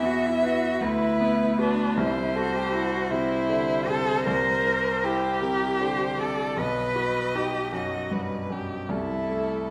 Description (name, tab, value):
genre	classical, slow romantic movement for piano trio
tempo	52 BPM (dotted quarters)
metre	6/8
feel	rubato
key	unclear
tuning	A4 = 440 Hz
part	clear violin	melody	0.0-9.7 s	G4 to E5	-33 LUFS	equal	none
part	rich cello	second line	0.0-9.7 s	D4 to B4	-29 LUFS	equal	none
part	bright concert grand piano	accompaniment	0.0-9.7 s	B1 to B4	-30 LUFS	equal	none
room	wet recital hall reverb, RT60 1.6 s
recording	none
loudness	-25 LUFS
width	mono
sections	0.0-9.7 A section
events	none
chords	0.0 E5; 0.8 Bm/D; 2.0 Am/C; 4.3 C7; 6.6 B; 8.9 Am/C